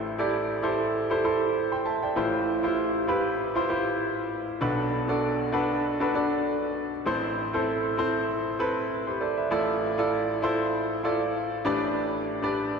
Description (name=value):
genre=pop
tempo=98 BPM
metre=4/4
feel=swing 55% on 16ths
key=A minor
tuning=A4 = 440 Hz
part: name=clear baby grand piano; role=solo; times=0.0-12.8 s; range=A1 to C6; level=-24 LUFS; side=equal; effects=wide subtle chorus
room=wet lush hall reverb, RT60 3.1 s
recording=dreamy mix soaked in reverb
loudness=-24 LUFS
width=side -5 dB against mid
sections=0.0-7.1 A section; 7.1-12.8 B section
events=none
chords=0.0 Am7; 2.2 Fmaj9#11/A; 4.6 Bm7; 7.1 Am; 9.5 Dmadd9/A; 11.7 G/A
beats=0.33 0.94 1.55 | 2.16 2.77 3.39 4.00 | 4.61 5.22 5.84 6.45 | 7.06 7.67 8.29 8.90 | 9.51 10.12 10.73 11.35 | 11.96 12.57